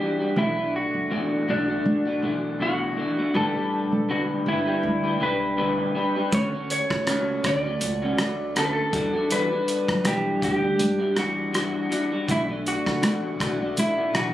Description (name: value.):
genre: indie pop, bedroom pop.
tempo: 80 BPM.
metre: 4/4.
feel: swing 55% on 16ths.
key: unclear.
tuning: A4 = 442 Hz.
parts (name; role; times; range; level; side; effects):
electric guitar through a small old amp; melody; 0.0-14.3 s; D4 to D5; -26 LUFS; equal; lush chorus, tape echo.
electric guitar through a small old amp; accompaniment; 0.0-14.3 s; A2 to B4; -25 LUFS; left 1 dB; lush chorus, warbly pitch drift.
upright bass; bass; 0.4-14.3 s; E1 to G2; -30 LUFS; equal; none.
cloth-damped thuddy drum kit; drums; 6.3-14.3 s; hi-hat, kick drum, rim click; -28 LUFS; equal; none.
room: light reverb.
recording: recorded on a phone in the room, studio ambience, compression.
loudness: -22 LUFS.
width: side -13 dB against mid.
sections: 0.0-14.3 A section.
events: none.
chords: 0.4 Bm7; 3.3 A9sus4; 6.3 Dmaj7; 8.9 Em9; 12.3 Bm7.